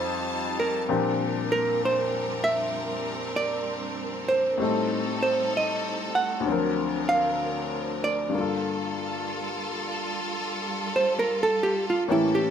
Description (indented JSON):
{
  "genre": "jazz ballad",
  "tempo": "64 BPM",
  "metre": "4/4",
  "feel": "swing 66% on 8ths",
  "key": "unclear",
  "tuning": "A4 = 442 Hz",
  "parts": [
    { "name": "hollow-body jazz guitar", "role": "melody", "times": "0.0-12.5 s", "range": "E4 to F#5", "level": "-25 LUFS", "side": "right 2 dB", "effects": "none" },
    { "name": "clear upright piano", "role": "accompaniment", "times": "0.0-12.5 s", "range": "D2 to A#4", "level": "-29 LUFS", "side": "left 5 dB", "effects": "none" },
    { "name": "rich symphonic string section", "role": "sustained chords", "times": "0.0-12.5 s", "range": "D3 to A5", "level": "-31 LUFS", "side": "right 2 dB", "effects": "none" }
  ],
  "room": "light reverb",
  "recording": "none",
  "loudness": "-24 LUFS",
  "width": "side -8 dB against mid",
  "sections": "0.0-12.5 A section",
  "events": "hollow-body jazz guitar solo 0.0-12.5",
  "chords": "0.0 F9; 0.9 Bb69; 4.6 Am7b5; 6.5 D7alt; 8.3 Gm9",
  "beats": "| 0.88 1.81 2.74 3.66 | 4.59 5.52 6.46 7.39 | 8.33 9.27 10.20 11.14 | 12.07"
}